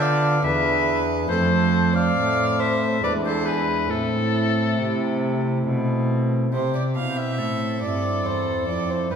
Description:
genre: classical, baroque-style sonata movement with continuo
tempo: 69 BPM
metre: 3/4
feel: straight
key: A minor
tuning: A4 = 440 Hz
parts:
  - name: bright oboe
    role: melody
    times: 0.0-9.2 s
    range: G4 to F5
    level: -26 LUFS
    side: left 6 dB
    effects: none
  - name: warm violin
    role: second line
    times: 0.0-9.2 s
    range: E4 to F5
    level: -26 LUFS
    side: right 3 dB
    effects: none
  - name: pipe organ, principal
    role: accompaniment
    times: 0.0-9.2 s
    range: E2 to A4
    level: -24 LUFS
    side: equal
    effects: none
  - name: rich cello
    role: bass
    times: 0.0-9.2 s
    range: E2 to D3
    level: -25 LUFS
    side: right 2 dB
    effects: none
room: wet recital hall reverb, RT60 1.5 s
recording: heard from further back in the room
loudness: -20 LUFS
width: side -7 dB against mid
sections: 0.0-6.5 A section; 6.5-9.2 A section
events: none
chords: 0.4 E7; 1.3 F; 3.0 E7; 3.9 Am; 6.5 C

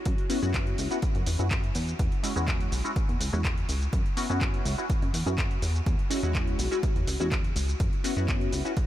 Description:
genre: filtered disco house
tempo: 124 BPM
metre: 4/4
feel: straight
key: unclear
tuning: A4 = 441 Hz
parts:
  - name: plucky analog bass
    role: bass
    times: 0.1-8.9 s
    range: B1 to F#2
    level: -29 LUFS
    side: equal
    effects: tube saturation, sidechain pumping, low-pass filter
  - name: electronic kick drum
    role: drums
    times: 0.1-8.9 s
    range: none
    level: -28 LUFS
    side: equal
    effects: none
  - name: punchy analog drum machine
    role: drums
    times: 0.1-8.9 s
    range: handclaps, hi-hat, shaker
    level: -35 LUFS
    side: equal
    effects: sidechain pumping on hats, sidechain pumping on perc
  - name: funky polysynth comp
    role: accompaniment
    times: 0.3-8.7 s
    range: G#3 to F#4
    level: -32 LUFS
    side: left 1 dB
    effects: chorus, phaser, sidechain pumping, low-pass filter
room: light reverb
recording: none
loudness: -25 LUFS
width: side -13 dB against mid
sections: 0.0-8.9 A section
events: none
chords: 0.1 F#7sus4; 1.8 E69; 3.9 F#7sus4; 5.6 E69; 7.8 F#7sus4

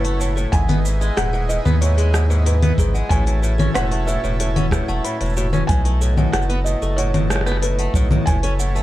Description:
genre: folktronica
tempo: 93 BPM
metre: 4/4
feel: straight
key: B mixolydian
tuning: A4 = 440 Hz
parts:
  - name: felt-muted upright piano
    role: melody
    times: 0.0-8.8 s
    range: B4 to G#5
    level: -27 LUFS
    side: right 2 dB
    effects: ping-pong delay, plate reverb
  - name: music box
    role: second line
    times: 0.0-8.8 s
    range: F#4 to B5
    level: -31 LUFS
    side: left 2 dB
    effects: digital delay, plate reverb
  - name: accordion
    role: sustained chords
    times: 0.0-8.8 s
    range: F#3 to A4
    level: -31 LUFS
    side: right 3 dB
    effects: plate reverb
  - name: fingerpicked swing-style acoustic guitar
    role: arpeggios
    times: 0.0-8.8 s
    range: G#2 to C#4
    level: -26 LUFS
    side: equal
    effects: vintage 12-bit sampler grit, ping-pong delay, plate reverb
  - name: warm sub bass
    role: bass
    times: 0.0-8.8 s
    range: D#1 to D#2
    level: -19 LUFS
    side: equal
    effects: none
  - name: organic electronic drum kit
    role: drums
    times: 0.0-8.8 s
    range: cabasa, congas, hi-hat, rim click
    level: -23 LUFS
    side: left 1 dB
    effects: none
  - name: kick drum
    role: drums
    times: 0.5-8.4 s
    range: none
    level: -21 LUFS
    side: equal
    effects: none
room: light reverb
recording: dark, warm production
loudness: -16 LUFS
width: side -15 dB against mid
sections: 0.0-8.8 A section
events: none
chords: 0.0 F#m7; 0.5 Emaj7; 3.1 A6; 5.7 B7; 8.3 F#m7

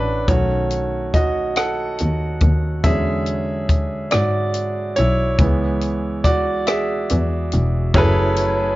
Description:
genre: slow six-eight R&B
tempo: 47 BPM (dotted quarters)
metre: 6/8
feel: straight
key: F# minor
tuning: A4 = 439 Hz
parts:
  - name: clear grand piano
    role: accompaniment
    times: 0.0-8.8 s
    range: D3 to F#5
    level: -20 LUFS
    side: right 1 dB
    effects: none
  - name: clear double bass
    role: bass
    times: 0.0-8.8 s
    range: E1 to G#2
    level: -21 LUFS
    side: equal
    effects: none
  - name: compact cocktail drum kit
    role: drums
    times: 0.3-8.6 s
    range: hi-hat, kick drum, rim click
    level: -19 LUFS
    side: equal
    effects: none
  - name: tonewheel organ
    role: sustained chords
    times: 7.9-8.8 s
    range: F#3 to G#5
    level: -28 LUFS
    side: left 1 dB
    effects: overdrive, chorus vibrato, slow rotary speaker
room: light reverb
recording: worn, warbling old tape, cassette tape, warbly pitch drift, nothing above 7.5 kHz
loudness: -17 LUFS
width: side -17 dB against mid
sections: 0.0-7.9 A section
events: grand piano solo 0.0-7.9; kick muted 6.7-7.9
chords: 0.3 B9; 2.8 E13; 5.4 C#m7; 7.9 F#m11

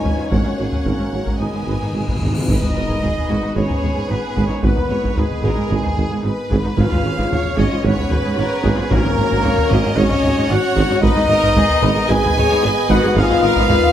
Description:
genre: cinematic, epic orchestral film score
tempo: 112 BPM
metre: 4/4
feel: straight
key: G# dorian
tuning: A4 = 440 Hz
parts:
  - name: bright symphonic violin section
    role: melody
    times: 0.0-13.9 s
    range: F#4 to G#5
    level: -27 LUFS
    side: equal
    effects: none
  - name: clear symphonic violin section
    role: second line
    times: 0.0-13.9 s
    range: G#4 to G#5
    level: -28 LUFS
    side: left 1 dB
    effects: none
  - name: warm symphonic viola section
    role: accompaniment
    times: 0.0-13.9 s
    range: A#3 to D#5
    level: -28 LUFS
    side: equal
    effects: none
  - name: dark French horn section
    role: sustained chords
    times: 0.0-13.9 s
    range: G#3 to G#4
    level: -22 LUFS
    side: left 4 dB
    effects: none
  - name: warm trombone section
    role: sustained chords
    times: 0.0-13.9 s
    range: C#3 to C#4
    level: -28 LUFS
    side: right 2 dB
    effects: none
  - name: dark tuba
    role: bass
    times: 0.0-13.7 s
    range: G#1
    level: -24 LUFS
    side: right 3 dB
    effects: none
  - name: rich symphonic cello section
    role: bass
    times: 0.0-13.7 s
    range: G#2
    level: -24 LUFS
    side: right 1 dB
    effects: none
  - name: taiko ensemble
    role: drums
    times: 0.0-13.9 s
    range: none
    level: -22 LUFS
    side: equal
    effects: none
  - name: rich symphonic double bass section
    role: bass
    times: 0.1-13.7 s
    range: G#1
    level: -24 LUFS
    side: right 2 dB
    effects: none
  - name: cymbal swell and impact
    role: sound effects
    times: 1.8-4.6 s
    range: none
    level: -30 LUFS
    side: equal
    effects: none
  - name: timpani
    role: percussion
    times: 1.4-2.5, 6.8-9.7 s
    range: G#2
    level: -26 LUFS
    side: left 1 dB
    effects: none
  - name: bright trumpet section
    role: stabs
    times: 2.5-13.9 s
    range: G#4 to G#5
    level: -24 LUFS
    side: right 2 dB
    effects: none
room: moderate scoring stage reverb, RT60 1.9 s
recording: none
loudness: -15 LUFS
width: side -10 dB against mid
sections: 0.0-2.5 A section; 2.5-13.9 B section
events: timpani fill 1.4-2.5; cymbal swell 1.8-2.5; impact 2.5-4.6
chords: 0.3 F#/G#; 1.4 G#m; 6.8 C#/G#; 8.9 F#/G#; 11.0 G#m

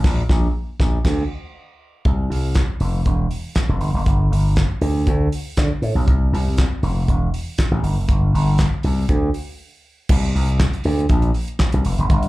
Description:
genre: disco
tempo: 119 BPM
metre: 4/4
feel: straight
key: unclear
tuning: A4 = 439 Hz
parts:
  - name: slap bass with an envelope filter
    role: bass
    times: 0.0-12.3 s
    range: E1 to D3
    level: -17 LUFS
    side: equal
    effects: none
  - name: damped 70s drum kit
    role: drums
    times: 0.0-12.3 s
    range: crash cymbal, handclaps, hi-hat, kick drum, snare drum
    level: -21 LUFS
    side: equal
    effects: none
room: little or no reverb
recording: live gig heard through the venue's PA, club reverb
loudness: -17 LUFS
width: side -18 dB against mid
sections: 0.0-2.1 A section; 2.1-10.1 B section; 10.1-12.3 C section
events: band accent 0.0-2.1; break 9.6-10.1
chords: none

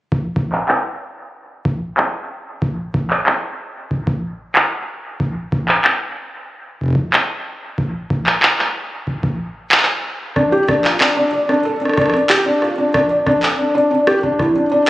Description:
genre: IDM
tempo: 93 BPM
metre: 4/4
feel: straight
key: D minor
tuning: A4 = 440 Hz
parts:
  - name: electronic kick drum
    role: drums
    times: 0.1-14.5 s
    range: none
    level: -20 LUFS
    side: equal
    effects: none
  - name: electronic handclaps and rim click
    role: drums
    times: 0.5-14.9 s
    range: none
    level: -16 LUFS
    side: equal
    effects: low-pass filter on snare, low-pass filter on room, dub echo
  - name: felt-muted upright piano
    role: arpeggios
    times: 10.4-14.9 s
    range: D4 to D5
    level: -14 LUFS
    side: equal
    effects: dub echo
room: moderate lush hall reverb, RT60 2.1 s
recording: recorded on a phone in the room, studio reverb, compression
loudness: -15 LUFS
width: side -16 dB against mid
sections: 0.0-14.9 A section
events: filter sweep on drum 0.0-14.9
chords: none

